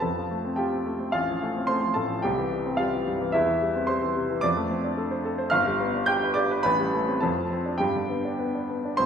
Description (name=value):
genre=classical, virtuoso piano study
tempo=108 BPM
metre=2/4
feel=rubato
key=F major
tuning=A4 = 440 Hz
part: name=clear baby grand piano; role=solo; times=0.0-9.1 s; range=G1 to G6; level=-23 LUFS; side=equal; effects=none
room=wet recital hall reverb, RT60 1.7 s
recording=recorded in a church or concert hall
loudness=-23 LUFS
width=side -7 dB against mid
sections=0.0-9.0 A section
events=none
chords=0.0 F; 1.1 F/A; 2.3 C; 3.3 C/E; 4.4 Dm7/F; 5.5 G7; 6.7 Am7; 7.2 Dm7/F; 7.8 G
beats=| 0.02 0.59 | 1.15 1.70 | 2.25 2.80 | 3.35 3.89 | 4.44 4.99 | 5.54 6.09 | 6.65 7.22 | 7.81 8.40 | 8.99